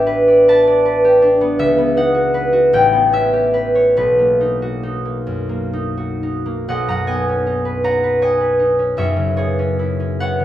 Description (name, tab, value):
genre	classical, solo harp piece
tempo	40-55 BPM (dotted quarters)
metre	6/8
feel	rubato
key	B major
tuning	A4 = 437 Hz
part	concert harp	solo	0.0-10.4 s	F#1 to B5	-14 LUFS	equal	none
room	light reverb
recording	close, detailed microphones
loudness	-13 LUFS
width	side -12 dB against mid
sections	0.0-6.7 A section; 6.7-10.4 A section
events	none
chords	0.0 A9sus4; 1.6 C#m11; 2.7 A9; 4.0 Bmaj7; 6.7 B69; 9.0 F#9sus4